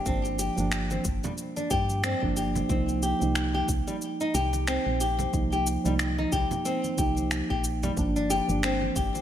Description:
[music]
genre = organic downtempo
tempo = 91 BPM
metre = 4/4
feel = swing 57% on 16ths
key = C minor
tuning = A4 = 440 Hz
[part]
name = muted felt-like synth keys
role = accompaniment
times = 0.0-9.2 s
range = F3 to Eb4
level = -30 LUFS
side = right 3 dB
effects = chorus, sidechain pumping, low-pass filter, digital delay
[part]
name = flamenco guitar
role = arpeggios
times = 0.0-9.2 s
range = G3 to G4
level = -30 LUFS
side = left 2 dB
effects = digital delay
[part]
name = woody FM bass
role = bass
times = 0.1-9.1 s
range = G1 to G2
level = -30 LUFS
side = equal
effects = sidechain pumping
[part]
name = electronic kick drum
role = drums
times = 0.1-9.1 s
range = none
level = -31 LUFS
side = equal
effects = none
[part]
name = electronic shaker and finger snaps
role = drums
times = 0.1-9.2 s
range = none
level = -33 LUFS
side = left 1 dB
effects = none
[part]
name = congas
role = percussion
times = 0.6-9.2 s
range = none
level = -38 LUFS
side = right 2 dB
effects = none
[sound]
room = light reverb, digital ambience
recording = none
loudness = -24 LUFS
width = side -10 dB against mid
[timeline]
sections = 0.0-9.2 A section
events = none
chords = 0.0 Gm; 2.7 Cm; 8.0 Gm

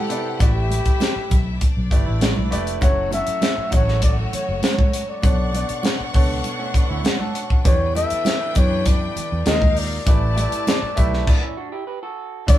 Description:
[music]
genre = lush 1970s-style soul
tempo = 99 BPM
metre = 4/4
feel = straight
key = unclear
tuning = A4 = 439 Hz
[part]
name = breathy flugelhorn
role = melody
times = 0.0-12.6 s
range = G4 to E5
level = -25 LUFS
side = left 2 dB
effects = none
[part]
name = clear studio string section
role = second line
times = 0.0-12.6 s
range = A3 to C#6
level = -31 LUFS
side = left 2 dB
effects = none
[part]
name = clear baby grand piano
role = accompaniment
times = 0.0-12.6 s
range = B2 to F#5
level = -29 LUFS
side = right 2 dB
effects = none
[part]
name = electric guitar through a small old amp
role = riff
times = 0.0-2.8, 6.6-7.6, 11.3-12.5 s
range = A3 to B4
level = -30 LUFS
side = right 4 dB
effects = none
[part]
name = tight funk drum kit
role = drums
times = 0.1-12.6 s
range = crash cymbal, hi-hat, kick drum, snare drum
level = -19 LUFS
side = equal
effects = none
[part]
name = vintage muted fingered electric bass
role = bass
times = 0.4-12.6 s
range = F1 to F#2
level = -23 LUFS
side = equal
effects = none
[part]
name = congas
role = percussion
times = 0.4-12.6 s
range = none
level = -28 LUFS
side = right 3 dB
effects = none
[sound]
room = moderate studio ambience, RT60 0.5 s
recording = band playing live in one room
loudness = -17 LUFS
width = side -13 dB against mid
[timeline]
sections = 0.0-2.8 A section; 2.8-12.5 B section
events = stop 11.3-12.5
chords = 0.4 A9sus4; 2.8 F#m7; 5.2 Bm9; 7.7 Em9; 9.5 Ebmaj9; 10.1 A7sus4

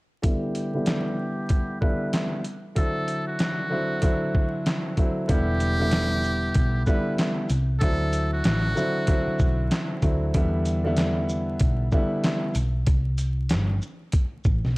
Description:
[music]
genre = hip hop, boom-bap hip-hop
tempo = 95 BPM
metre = 4/4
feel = swing 61% on 16ths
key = E minor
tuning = A4 = 440 Hz
[part]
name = trumpet with metal mute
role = melody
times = 0.2-9.7 s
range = F#4 to B4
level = -31 LUFS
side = equal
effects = low-pass filter
[part]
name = warm grand piano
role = accompaniment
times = 0.2-12.5 s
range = D3 to E4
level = -26 LUFS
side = equal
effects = cassette tape, low-pass filter
[part]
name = dusty soul sampler-style drum kit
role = drums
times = 0.2-14.7 s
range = handclaps, hi-hat, kick drum, shaker, snare drum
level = -24 LUFS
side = equal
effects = vintage 12-bit sampler grit
[part]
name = hollow-body short-scale picked electric bass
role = bass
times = 5.3-14.8 s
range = E1 to E2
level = -25 LUFS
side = equal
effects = tube saturation
[sound]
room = little or no reverb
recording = dry, gritty hardware recording, vinyl crackle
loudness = -22 LUFS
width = side -23 dB against mid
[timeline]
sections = 0.2-5.3 A section; 5.3-14.8 B section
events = filter sweep 0.2-5.3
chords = 0.2 Em7; 2.8 D9; 5.3 Em7; 7.8 D9; 10.3 Em7; 12.9 C5

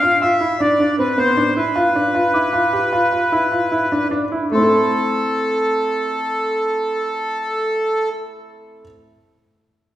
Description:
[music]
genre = contemporary instrumental, chamber music in an uneven meter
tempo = 152 BPM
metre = 7/4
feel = straight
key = A minor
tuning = A4 = 440 Hz
[part]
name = accordion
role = melody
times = 0.0-8.1 s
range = A4 to F5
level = -18 LUFS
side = equal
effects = none
[part]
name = warm concert grand piano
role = arpeggios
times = 0.0-8.9 s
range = A3 to A4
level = -19 LUFS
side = equal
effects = none
[part]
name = celesta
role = texture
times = 2.3-8.8 s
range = C6 to D6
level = -26 LUFS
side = equal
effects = none
[sound]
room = wet recital hall reverb, RT60 1.6 s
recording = heard from further back in the room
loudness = -16 LUFS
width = side -13 dB against mid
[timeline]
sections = 0.0-4.5 A section; 4.5-7.3 B section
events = slowing down 1.4-4.5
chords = 0.0 G7 (rootless); 4.5 Am

